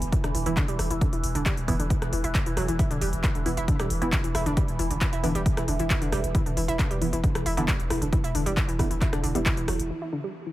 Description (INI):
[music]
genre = driving peak-time techno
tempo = 135 BPM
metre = 4/4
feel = straight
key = E minor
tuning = A4 = 440 Hz
[part]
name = saturated sub bass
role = bass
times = 0.0-9.9 s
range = E1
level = -31 LUFS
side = equal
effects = overdrive, sidechain pumping, low-pass filter
[part]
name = overtone-sweeping drone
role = drone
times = 0.0-9.9 s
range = E3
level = -35 LUFS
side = right 2 dB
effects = chorus, built-in reverb, sidechain pumping
[part]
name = techno drum kit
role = drums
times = 0.0-10.5 s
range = handclaps, hi-hat, rim click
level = -32 LUFS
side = equal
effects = low-pass filter on hats, low-pass filter on snare, low-pass filter on room
[part]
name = analog pluck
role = riff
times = 0.1-10.5 s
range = D3 to E4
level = -31 LUFS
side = equal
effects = chorus, sidechain pumping, dub echo
[part]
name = electronic kick drum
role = drums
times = 0.1-9.6 s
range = none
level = -26 LUFS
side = equal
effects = none
[part]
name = filtered dub chord stab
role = stabs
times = 0.5-9.4 s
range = E3 to E4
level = -34 LUFS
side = right 3 dB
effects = none
[sound]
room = little or no reverb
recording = none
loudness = -23 LUFS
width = side -15 dB against mid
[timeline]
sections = 0.0-9.9 A section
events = drop 0.0-9.9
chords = 0.0 E5